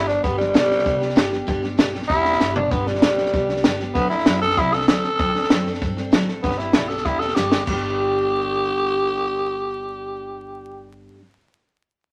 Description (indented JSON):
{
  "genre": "rockabilly",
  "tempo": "194 BPM",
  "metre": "4/4",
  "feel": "straight",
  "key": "G major",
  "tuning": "A4 = 440 Hz",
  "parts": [
    { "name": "growling tenor saxophone", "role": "melody", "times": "0.0-10.9 s", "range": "G3 to A4", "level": "-24 LUFS", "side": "equal", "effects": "none" },
    { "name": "picked steel-string acoustic guitar", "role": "accompaniment", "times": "0.0-11.2 s", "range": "G2 to A4", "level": "-29 LUFS", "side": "equal", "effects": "none" },
    { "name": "upright bass", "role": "bass", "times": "0.0-11.1 s", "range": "E1 to G2", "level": "-34 LUFS", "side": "equal", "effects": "none" },
    { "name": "compact cocktail drum kit", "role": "drums", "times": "0.1-7.7 s", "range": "crash cymbal, hi-hat, kick drum, snare drum, toms", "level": "-23 LUFS", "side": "equal", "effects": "none" }
  ],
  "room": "moderate small room reverb, RT60 0.6 s",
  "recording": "vinyl crackle, lossy compression artefacts",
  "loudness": "-20 LUFS",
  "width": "mono",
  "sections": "0.0-7.7 A section; 7.7-10.2 B section",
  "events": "drum fill 2.4-2.7, 7.4-7.7",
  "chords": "0.0 G; 4.0 D7; 6.4 G"
}